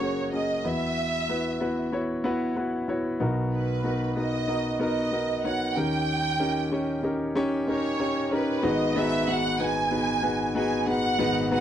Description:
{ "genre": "pop", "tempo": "94 BPM", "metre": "4/4", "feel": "swing 56% on 16ths", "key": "G# minor", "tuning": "A4 = 440 Hz", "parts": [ { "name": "rich studio violin section", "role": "melody", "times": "0.0-11.6 s", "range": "B4 to G#5", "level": "-28 LUFS", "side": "right 3 dB", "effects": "none" }, { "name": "warm grand piano", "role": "accompaniment", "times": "0.0-11.6 s", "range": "F#1 to C#5", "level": "-25 LUFS", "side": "left 1 dB", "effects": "none" } ], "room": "light reverb", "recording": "dry, close 1970s-style studio recording", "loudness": "-24 LUFS", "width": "side -10 dB against mid", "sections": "0.0-8.6 A section; 8.6-11.6 B section", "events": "none", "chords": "0.0 F#add9; 0.6 Esus2; 3.2 Bmaj7; 5.8 D#7; 8.6 G#m7" }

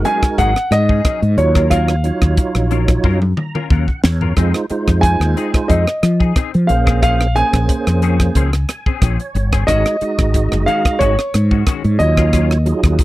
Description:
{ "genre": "electric jazz fusion", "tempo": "90 BPM", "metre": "4/4", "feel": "swing 53% on 16ths", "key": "Eb dorian", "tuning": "A4 = 440 Hz", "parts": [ { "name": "warm grand piano", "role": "melody", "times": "0.0-13.0 s", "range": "Db5 to Ab5", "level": "-19 LUFS", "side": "right 1 dB", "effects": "slapback echo" }, { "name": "tonewheel organ", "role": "accompaniment", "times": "0.0-13.0 s", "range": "Gb3 to Bb5", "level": "-21 LUFS", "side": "right 3 dB", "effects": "slow rotary speaker, overdrive, chorus vibrato" }, { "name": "semi-hollow electric guitar", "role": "stabs", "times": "0.0-13.0 s", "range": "Eb3 to Bb4", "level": "-25 LUFS", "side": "left 11 dB", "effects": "ensemble chorus" }, { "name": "mellow fretless electric bass", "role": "bass", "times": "0.0-13.0 s", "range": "Gb1 to F3", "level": "-15 LUFS", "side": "equal", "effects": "analog chorus" }, { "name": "crisp fusion drum kit", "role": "drums", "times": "0.0-13.0 s", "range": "hi-hat, kick drum, rim click, snare drum, toms", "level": "-17 LUFS", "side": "equal", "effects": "none" } ], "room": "little or no reverb", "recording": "dry, close 1970s-style studio recording", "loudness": "-13 LUFS", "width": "side -17 dB against mid", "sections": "0.0-13.0 A section", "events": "drum fill 3.0-4.4; tonewheel organ fill 3.0-4.4, 8.4-9.7", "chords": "0.0 Ab7sus4; 1.4 Ebm9; 4.4 Fm7; 6.7 Bbm9; 9.7 Ab7sus4; 12.0 Ebm9" }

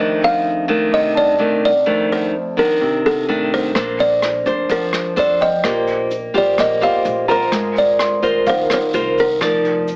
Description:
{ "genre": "bossa nova", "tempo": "127 BPM", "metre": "4/4", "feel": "straight", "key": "unclear", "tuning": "A4 = 440 Hz", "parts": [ { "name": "buzzing kalimba", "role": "melody", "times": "0.0-10.0 s", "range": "A4 to F5", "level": "-17 LUFS", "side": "equal", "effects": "none" }, { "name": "nylon-string guitar", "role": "accompaniment", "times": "0.0-10.0 s", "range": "F2 to D5", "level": "-18 LUFS", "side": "equal", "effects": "none" }, { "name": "warm baby grand piano", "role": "accompaniment", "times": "0.0-9.6 s", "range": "F5 to D6", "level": "-25 LUFS", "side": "equal", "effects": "none" }, { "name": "upright bass", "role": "bass", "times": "3.8-10.0 s", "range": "F1 to F2", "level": "-32 LUFS", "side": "equal", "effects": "none" }, { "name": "vintage brush drum kit", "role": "drums", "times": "3.8-10.0 s", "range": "hi-hat, kick drum, rim click", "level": "-24 LUFS", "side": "equal", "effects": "none" }, { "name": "tube shaker", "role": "percussion", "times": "3.8-10.0 s", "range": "none", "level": "-42 LUFS", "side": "right 1 dB", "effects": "none" } ], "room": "light reverb", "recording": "heavily compressed radio sound, multiband compression, AM radio sound", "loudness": "-14 LUFS", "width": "side -30 dB against mid", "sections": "0.0-10.0 A section", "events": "none", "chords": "0.0 F6; 3.8 Bbmaj9; 5.6 Eb69/Bb; 7.5 Ab69; 9.4 F7sus4" }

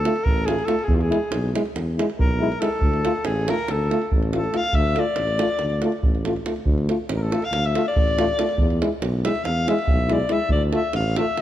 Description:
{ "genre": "balkan folk, Balkan brass band", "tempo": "280 BPM (eighths)", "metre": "9/8", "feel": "straight", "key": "unclear", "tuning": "A4 = 440 Hz", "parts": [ { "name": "warm alto saxophone", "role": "second line", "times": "0.0-11.4 s", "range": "F4 to F5", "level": "-25 LUFS", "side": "left 2 dB", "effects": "none" }, { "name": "clear euphonium", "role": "accompaniment", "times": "0.0-11.3 s", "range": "E4 to F4", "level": "-28 LUFS", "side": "left 6 dB", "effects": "none" }, { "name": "warm trombone", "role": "accompaniment", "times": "0.0-11.3 s", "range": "G#3 to A3", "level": "-28 LUFS", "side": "right 5 dB", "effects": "none" }, { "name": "mellow tuba", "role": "bass", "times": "0.0-11.4 s", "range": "A1 to E2", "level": "-25 LUFS", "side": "equal", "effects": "none" }, { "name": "davul", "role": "percussion", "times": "0.1-11.4 s", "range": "none", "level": "-25 LUFS", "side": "right 1 dB", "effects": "none" } ], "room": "light reverb", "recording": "none", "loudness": "-19 LUFS", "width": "side -12 dB against mid", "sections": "0.0-11.4 A section", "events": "alto saxophone solo 0.0-11.4", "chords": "0.0 Dm (rootless); 0.9 E; 2.8 Dm; 8.6 E; 10.5 Dm" }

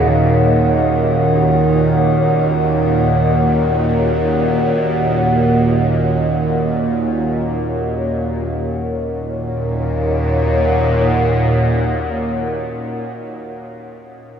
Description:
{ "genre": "dark ambient drone", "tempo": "free time", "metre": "none", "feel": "none", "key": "Eb minor", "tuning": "A4 = 440 Hz", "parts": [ { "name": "mellow bass clarinet", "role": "melody", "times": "0.0-7.2 s", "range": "Eb3", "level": "-19 LUFS", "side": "right 1 dB", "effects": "tape echo" }, { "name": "deep dark ambient pad", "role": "sustained chords", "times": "0.0-13.6 s", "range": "Bb4 to Gb5", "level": "-19 LUFS", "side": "left 1 dB", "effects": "chorus, built-in reverb" }, { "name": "bowed-like drone", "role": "drone", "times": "0.0-13.0 s", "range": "Eb2 to Bb2", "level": "-18 LUFS", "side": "right 1 dB", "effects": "built-in reverb, phaser" } ], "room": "wet huge ambient reverb, RT60 7.4 s", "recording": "in a vast, echoing space, cassette tape, small room ambience", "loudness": "-14 LUFS", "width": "side -8 dB against mid", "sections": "0.0-8.5 A section; 8.5-13.7 B section", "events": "none", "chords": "0.0 Ebm" }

